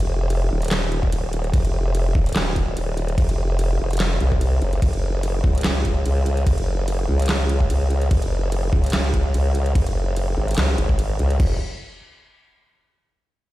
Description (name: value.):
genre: heavy wobble dubstep.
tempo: 146 BPM.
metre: 4/4.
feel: swing 54% on 16ths, half-time.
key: unclear.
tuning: A4 = 435 Hz.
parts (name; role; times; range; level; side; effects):
formant-sweep wobble bass; bass; 0.0-11.6 s; Eb1 to Db2; -20 LUFS; equal; chorus, overdrive.
dubstep drum kit; drums; 0.0-11.5 s; crash cymbal, handclaps, hi-hat, snare drum; -28 LUFS; right 1 dB; none.
electronic kick drum; drums; 1.0-11.5 s; none; -19 LUFS; equal; none.
room: little or no reverb.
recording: played on a big sound system in a bare room, stone room reverb.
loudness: -18 LUFS.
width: side -16 dB against mid.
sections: 0.0-11.4 A section; 11.4-13.0 B section.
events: drop 0.0-11.4.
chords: none.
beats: 0.30 0.71 1.12 | 1.53 1.95 2.36 2.77 | 3.18 3.59 4.00 4.41 | 4.82 5.23 5.64 6.06 | 6.47 6.88 7.29 7.70 | 8.11 8.52 8.93 9.34 | 9.75 10.16 10.58 10.99 | 11.40.